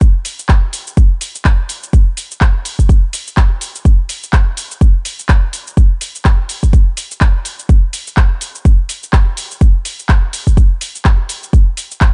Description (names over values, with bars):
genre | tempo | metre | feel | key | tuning
house | 125 BPM | 4/4 | swing 57% on 16ths | none | none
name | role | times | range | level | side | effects
electronic kick drum | drums | 0.0-12.1 s | none | -12 LUFS | equal | small room ambience
house drum kit | drums | 0.0-12.1 s | handclaps, hi-hat, shaker | -24 LUFS | equal | small room ambience
room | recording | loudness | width
little or no reverb | nothing above 10.9 kHz | -14 LUFS | mono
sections
0.0-12.1 A section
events
none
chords
none